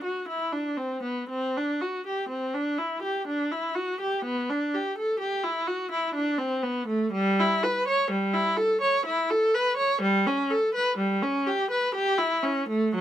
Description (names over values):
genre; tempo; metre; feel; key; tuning
classical, baroque-style suite movement for unaccompanied viola; 62 BPM; 3/4; rubato; G major; A4 = 440 Hz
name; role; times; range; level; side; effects
warm viola; solo; 0.0-13.0 s; F#3 to C#5; -24 LUFS; equal; none
room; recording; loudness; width
little or no reverb; close, detailed microphones; -24 LUFS; side -11 dB against mid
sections
0.0-13.0 A section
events
none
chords
none